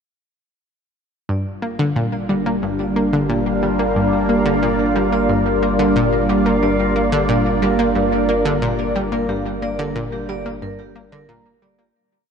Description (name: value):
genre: ambient, sequencer-driven space music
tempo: 90 BPM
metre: 4/4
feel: straight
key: G minor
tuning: A4 = 439 Hz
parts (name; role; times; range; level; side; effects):
- sweeping resonant pad; sustained chords; 1.3-12.0 s; G3 to D5; -19 LUFS; equal; chorus
- vibraphone with medium hard mallets; arpeggios; 1.3-12.0 s; G4 to Bb5; -31 LUFS; moving between left 2 dB and right 5 dB; auto-pan, tape echo
- analog pluck; riff; 1.3-11.9 s; G2 to Bb3; -21 LUFS; equal; chorus, tape echo
- warm sub bass; bass; 1.3-11.9 s; G1; -29 LUFS; equal; none
- bubbling stepped-filter texture; texture; 1.6-12.0 s; F4 to F5; -27 LUFS; right 3 dB; chorus, built-in reverb
room: wet cathedral reverb, RT60 6.7 s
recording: in a vast, echoing space, nothing above 10.5 kHz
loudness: -16 LUFS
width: side -6 dB against mid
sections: 1.3-12.0 A section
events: fade-in on vibraphone 1.3-12.0; fade-out 8.4-12.0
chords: 1.3 Gm